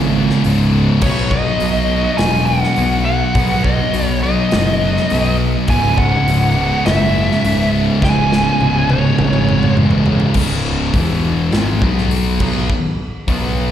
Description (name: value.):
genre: stoner and doom metal.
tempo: 103 BPM.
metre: 4/4.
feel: straight.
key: C# minor.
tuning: A4 = 441 Hz.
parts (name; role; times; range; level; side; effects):
thick fuzz guitar; riff; 0.0-13.7 s; C#2 to B3; -19 LUFS; left 6 dB; distortion, slapback echo.
thick fuzz guitar; riff; 0.0-10.3 s; C#2 to B3; -20 LUFS; right 7 dB; distortion, slapback echo.
tight distorted guitar; riff; 0.0-13.7 s; C#2 to B4; -24 LUFS; right 1 dB; distortion, slapback echo.
fuzz picked electric bass; bass; 0.0-13.7 s; C#1 to B1; -19 LUFS; equal; overdrive.
big rock drum kit; drums; 0.3-13.4 s; crash cymbal, hi-hat, kick drum, snare drum, toms; -20 LUFS; equal; none.
fuzz lead guitar; melody; 1.0-9.7 s; C#5 to G#5; -19 LUFS; equal; distortion, slapback echo, tape echo.
room: small room ambience.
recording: live gig heard through the venue's PA, recital hall reverb.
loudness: -13 LUFS.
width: side -10 dB against mid.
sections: 0.0-10.4 A section; 10.4-13.7 B section.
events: drum fill 8.0-10.4.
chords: 0.0 C#m; 1.0 B; 5.7 C#m; 10.4 C#5; 10.9 E5; 11.5 G#5; 11.8 B5.